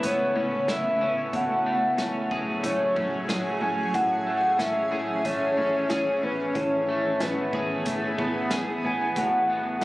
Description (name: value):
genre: dream pop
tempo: 92 BPM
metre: 4/4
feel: straight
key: A major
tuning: A4 = 441 Hz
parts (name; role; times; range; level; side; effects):
- soft octave-layered synth lead; melody; 0.0-9.8 s; B4 to G#5; -26 LUFS; equal; chorus, digital delay, shimmer reverb
- granular cloud pad; sustained chords; 0.0-9.8 s; C#3 to G#4; -32 LUFS; right 1 dB; built-in reverb, shimmer reverb
- electric guitar at the edge of break-up; arpeggios; 0.0-9.8 s; A2 to G#4; -29 LUFS; equal; analog chorus, digital delay, shimmer reverb
- bright cello; bass; 0.0-9.8 s; A2; -35 LUFS; equal; none
- vintage drum kit; drums; 0.0-9.8 s; hi-hat, kick drum, snare drum; -34 LUFS; equal; none
room: moderate huge ambient reverb, RT60 8.9 s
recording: recorded on a phone in the room, club reverb, compression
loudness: -23 LUFS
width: side -18 dB against mid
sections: 0.0-9.8 A section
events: none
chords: 0.0 Aadd9; 1.3 F#madd9/A; 3.9 C#m/A; 6.6 E/A; 9.2 Aadd9